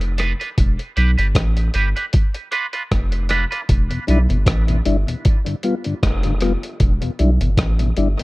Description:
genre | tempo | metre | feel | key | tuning
dub reggae | 77 BPM | 4/4 | swing 56% on 16ths | E phrygian | A4 = 440 Hz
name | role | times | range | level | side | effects
soft dub sub bass | bass | 0.0-8.2 s | E1 to B1 | -18 LUFS | equal | none
lo-fi sampler-style drum kit | drums | 0.0-8.2 s | hi-hat, kick drum, rim click | -19 LUFS | equal | none
clean electric guitar | accompaniment | 0.2-3.6 s | D4 to B4 | -24 LUFS | right 4 dB | high-pass filter, dub echo
mellow tonewheel organ | accompaniment | 3.9-8.2 s | E2 to F4 | -22 LUFS | left 3 dB | slow rotary speaker, high-pass filter, dub echo
room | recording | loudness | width
little or no reverb | none | -16 LUFS | side -21 dB against mid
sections
0.0-8.2 A section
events
break 0.0-3.7; filter sweep on clean electric guitar 0.0-3.7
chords
0.0 Bdim/F; 0.6 Em7; 2.1 Bdim; 3.7 Em7; 5.2 G7; 6.8 Em7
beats
| 0.57 1.35 2.13 2.91 | 3.69 4.47 5.25 6.02 | 6.80 7.58

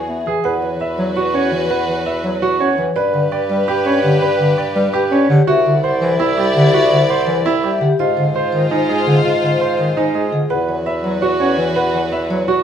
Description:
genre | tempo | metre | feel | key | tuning
classical, minimalist pattern music | 334 BPM (eighths) | 7/8 | straight | unclear | A4 = 440 Hz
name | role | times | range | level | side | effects
vibraphone with soft mallets | melody | 0.0-12.6 s | G4 to C#6 | -20 LUFS | left 6 dB | none
warm chamber violin section | sustained chords | 0.0-12.6 s | E4 to D5 | -23 LUFS | left 2 dB | none
mellow bassoon | bass | 0.0-12.6 s | C2 to G#2 | -22 LUFS | right 1 dB | none
mellow bass clarinet | accompaniment | 0.1-12.4 s | D3 to C#4 | -19 LUFS | right 1 dB | none
clear concert grand piano | arpeggios | 0.3-12.6 s | D#4 to E5 | -19 LUFS | right 6 dB | none
room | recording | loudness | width
moderate large studio reverb, RT60 1.0 s | heard from further back in the room | -14 LUFS | side -8 dB against mid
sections
0.4-12.6 A section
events
none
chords
0.4 Esus2; 3.0 G; 5.5 Cadd9; 8.0 G#6; 10.5 Esus2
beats
0.09 0.27 | 0.45 0.63 0.81 0.99 1.17 1.35 1.52 | 1.71 1.88 2.06 2.24 2.42 2.60 2.78 | 2.96 3.14 3.32 3.50 3.68 3.86 4.04 | 4.22 4.40 4.58 4.76 4.94 5.12 5.30 | 5.48 5.66 5.84 6.02 6.20 6.38 6.55 | 6.74 6.91 7.09 7.27 7.45 7.63 7.81 | 7.99 8.17 8.35 8.53 8.71 8.89 9.07 | 9.25 9.43 9.61 9.79 9.97 10.15 10.33 | 10.51 10.69 10.87 11.05 11.23 11.40 11.59 | 11.77 11.94 12.12 12.30 12.48

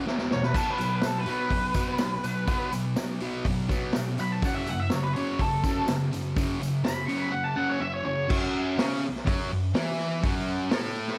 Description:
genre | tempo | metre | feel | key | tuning
garage rock duo or trio | 124 BPM | 4/4 | straight | F# minor | A4 = 441 Hz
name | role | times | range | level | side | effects
thick fuzz guitar | riff | 0.0-11.2 s | E2 to E4 | -31 LUFS | equal | distortion
vintage drum kit | drums | 0.1-11.1 s | crash cymbal, hi-hat, kick drum, snare drum, splash cymbal | -32 LUFS | equal | none
octave-fuzz lead guitar | melody | 0.3-8.3 s | A4 to C#6 | -32 LUFS | equal | distortion, tape echo
tambourine | percussion | 0.6-7.2 s | none | -50 LUFS | equal | none
room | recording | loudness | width
moderate stone room reverb, RT60 1.0 s, small room ambience | none | -27 LUFS | mono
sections
0.0-8.3 A section; 8.3-11.2 B section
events
drum fill 0.1-0.5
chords
0.1 E5; 0.5 B5; 4.4 F#5; 8.3 F#m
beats
0.06 | 0.55 1.03 1.52 2.01 | 2.49 2.98 3.46 3.95 | 4.43 4.92 5.40 5.89 | 6.37 6.86 7.34 7.82 | 8.31 8.79 9.27 9.75 | 10.23 10.71

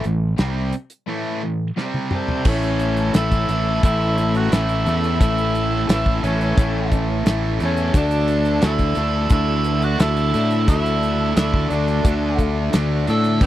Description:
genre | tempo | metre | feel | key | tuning
classic rock | 88 BPM | 4/4 | straight | A major | A4 = 440 Hz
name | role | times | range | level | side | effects
crunchy overdriven guitar | riff | 0.0-13.5 s | G2 to D4 | -27 LUFS | left 10 dB | none
distorted electric guitar | riff | 0.0-13.5 s | G2 to D4 | -26 LUFS | right 6 dB | overdrive
growling fingered electric bass | bass | 0.0-13.5 s | G1 to A2 | -21 LUFS | equal | overdrive
damped 70s drum kit | drums | 0.0-13.5 s | crash cymbal, hi-hat, kick drum, snare drum, toms | -18 LUFS | equal | none
bright tenor saxophone | melody | 2.1-13.5 s | C4 to A4 | -24 LUFS | right 2 dB | none
octave-fuzz lead guitar | second line | 2.1-13.4 s | A4 to E5 | -33 LUFS | equal | distortion
dark upright piano | accompaniment | 2.4-13.5 s | A3 to G#5 | -31 LUFS | left 4 dB | none
bright tonewheel organ | sustained chords | 2.5-13.5 s | A3 to A4 | -34 LUFS | left 1 dB | none
room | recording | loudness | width
little or no reverb | dry, close 1970s-style studio recording | -17 LUFS | side -13 dB against mid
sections
0.0-2.5 A section; 2.5-13.5 B section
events
drum fill 1.8-2.5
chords
0.0 A5; 1.8 C5; 2.5 A; 7.9 D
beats
0.39 1.08 1.77 | 2.46 3.14 3.83 4.51 | 5.20 5.88 6.57 7.25 | 7.94 8.62 9.31 9.99 | 10.68 11.36 12.04 12.73 | 13.41

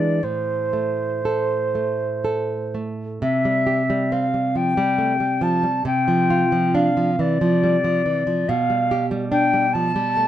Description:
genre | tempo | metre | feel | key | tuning
romantic duo for flute and classical guitar | 39-48 BPM (dotted quarters) | 6/8 | rubato | A minor, C major from 3.2 s | A4 = 439 Hz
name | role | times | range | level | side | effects
silver concert flute | melody | 0.0-10.3 s | C5 to A5 | -21 LUFS | left 2 dB | none
nylon-string guitar | accompaniment | 0.0-10.3 s | A2 to A4 | -21 LUFS | right 2 dB | none
room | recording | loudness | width
moderate studio reverb, RT60 0.6 s | nothing above 10.4 kHz | -18 LUFS | side -11 dB against mid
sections
0.0-3.2 A section; 3.2-10.3 B section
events
none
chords
0.2 N.C.; 3.2 C; 5.9 Dm7/C; 8.5 G7/B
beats
| 0.24 1.76 | 3.23 4.57 | 5.87 7.19 | 8.49 9.74

